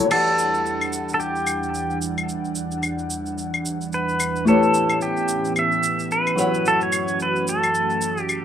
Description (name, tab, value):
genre	sunset chillout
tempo	110 BPM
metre	4/4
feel	swing 58% on 16ths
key	E dorian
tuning	A4 = 443 Hz
part	nylon-string guitar	accompaniment	0.0-8.4 s	E3 to F#5	-24 LUFS	moving between left 3 dB and right 3 dB	auto-pan, vintage 12-bit sampler grit, digital delay
part	airy breathy pad	sustained chords	0.0-8.4 s	E2 to F#5	-27 LUFS	right 1 dB	chorus
part	pedal steel guitar	melody	0.1-8.4 s	G4 to E5	-22 LUFS	right 1 dB	tape echo
part	electronic crash cymbal, claves and shaker	drums	0.1-8.4 s	none	-28 LUFS	left 1 dB	none
room	wet small room reverb, RT60 0.5 s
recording	rough home demo mix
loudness	-19 LUFS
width	side -9 dB against mid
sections	0.1-8.4 A section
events	none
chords	0.1 Em7; 4.5 A9; 6.4 F#m7